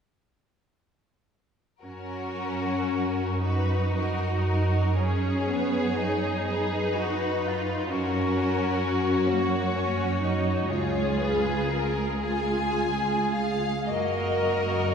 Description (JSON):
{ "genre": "classical, slow romantic movement for string orchestra", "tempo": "34-44 BPM (dotted quarters)", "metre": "6/8", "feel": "rubato", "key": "F# major", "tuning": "A4 = 442 Hz", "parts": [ { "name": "warm symphonic violin section", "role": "melody", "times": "1.8-14.9 s", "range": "G#4 to G#5", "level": "-32 LUFS", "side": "left 4 dB", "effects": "none" }, { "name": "rich symphonic violin section", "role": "second line", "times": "1.8-14.9 s", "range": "A#3 to G#4", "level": "-30 LUFS", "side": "left 2 dB", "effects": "none" }, { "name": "rich symphonic viola section", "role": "accompaniment", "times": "1.8-14.9 s", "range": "A#3 to A#4", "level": "-30 LUFS", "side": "equal", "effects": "none" }, { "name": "rich symphonic cello section", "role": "bass", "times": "1.8-14.9 s", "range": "C#2 to F#2", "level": "-28 LUFS", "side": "right 2 dB", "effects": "none" }, { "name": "dark symphonic double bass section", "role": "bass", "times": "13.9-14.9 s", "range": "F#1", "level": "-34 LUFS", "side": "right 1 dB", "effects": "none" } ], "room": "wet concert hall reverb, RT60 2.5 s", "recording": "heard from further back in the room", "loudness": "-24 LUFS", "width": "side -7 dB against mid", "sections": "1.8-13.9 A section; 13.9-14.9 B section", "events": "none", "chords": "1.8 F#; 5.0 C#7(no3)/F#; 7.9 F#; 10.7 C#; 13.9 F#", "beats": "| 1.82 3.43 | 4.97 6.46 | 7.89 9.27 | 10.69 12.20 | 13.89" }